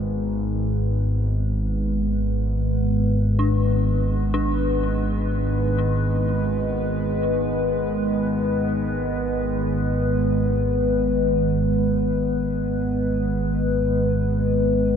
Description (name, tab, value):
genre	dark ambient drone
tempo	free time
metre	none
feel	none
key	G# minor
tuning	A4 = 440 Hz
part	dark analog pad	sustained chords	0.0-15.0 s	D#3 to B4	-23 LUFS	equal	chorus, phaser
part	analog drone	drone	0.0-15.0 s	G#1 to G#2	-23 LUFS	equal	wide subtle chorus
part	dark detuned synth bell	arpeggios	3.4-11.6 s	D4	-31 LUFS	equal	chorus, tremolo, ping-pong delay
room	moderate huge ambient reverb, RT60 7.5 s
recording	none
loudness	-20 LUFS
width	side -7 dB against mid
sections	0.0-11.6 A section; 11.6-15.0 B section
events	none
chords	0.0 G#m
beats	free time